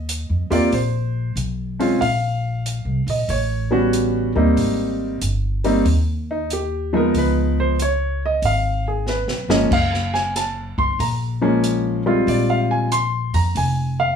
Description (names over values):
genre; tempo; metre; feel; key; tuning
jazz piano trio; 93 BPM; 4/4; swing 67% on 8ths; Eb major; A4 = 441 Hz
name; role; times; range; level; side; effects
warm baby grand piano; melody; 0.0-14.2 s; F3 to C6; -19 LUFS; equal; none
upright bass; bass; 0.0-14.2 s; F1 to F2; -22 LUFS; equal; none
open jazz drum kit; drums; 0.1-13.8 s; crash cymbal, hi-hat, kick drum, snare drum; -28 LUFS; left 1 dB; none
room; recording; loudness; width
light reverb; studio reverb; -18 LUFS; side -7 dB against mid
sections
0.0-14.2 A section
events
drum fill 9.1-9.7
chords
0.0 Ebsus2; 2.0 Bbsus2; 3.3 A13; 4.6 Abmaj9; 7.1 Db9; 9.7 Gbmaj7; 12.3 Bb7sus2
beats
0.07 0.72 1.36 | 2.00 2.65 3.29 3.93 | 4.57 5.22 5.86 6.50 | 7.14 7.79 8.43 9.07 | 9.71 10.35 10.99 11.64 | 12.28 12.92 13.56